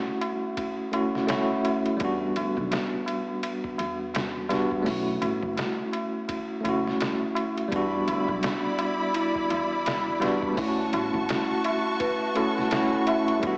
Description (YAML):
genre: trip hop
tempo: 84 BPM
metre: 4/4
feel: swing 59% on 16ths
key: E dorian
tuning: A4 = 439 Hz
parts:
  - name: bell-like tine electric piano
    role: accompaniment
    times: 0.0-13.6 s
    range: G3 to F#4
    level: -26 LUFS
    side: equal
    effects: tremolo, tape echo
  - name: tabla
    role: percussion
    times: 0.1-13.6 s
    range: none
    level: -35 LUFS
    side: equal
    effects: none
  - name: trip hop sampler-style drum kit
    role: drums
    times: 0.2-13.6 s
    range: hi-hat, kick drum, ride cymbal, snare drum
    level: -34 LUFS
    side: equal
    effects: none
  - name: upright bass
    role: bass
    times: 2.0-13.6 s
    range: F#1 to E2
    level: -37 LUFS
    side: equal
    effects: none
  - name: bright studio string section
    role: sustained chords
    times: 7.7-13.6 s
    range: E4 to C#6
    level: -29 LUFS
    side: equal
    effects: none
  - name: celesta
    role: arpeggios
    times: 9.1-13.4 s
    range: E4 to E5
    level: -30 LUFS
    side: equal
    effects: analog delay
room: wet lush hall reverb, RT60 2.6 s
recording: dreamy mix soaked in reverb, vinyl crackle, small speaker sound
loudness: -24 LUFS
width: side -33 dB against mid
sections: 0.0-13.6 A section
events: none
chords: 0.0 Dmaj7 (rootless); 2.0 Em7; 4.9 B7sus4 (rootless); 7.7 Em7; 10.6 Dmaj7 (rootless)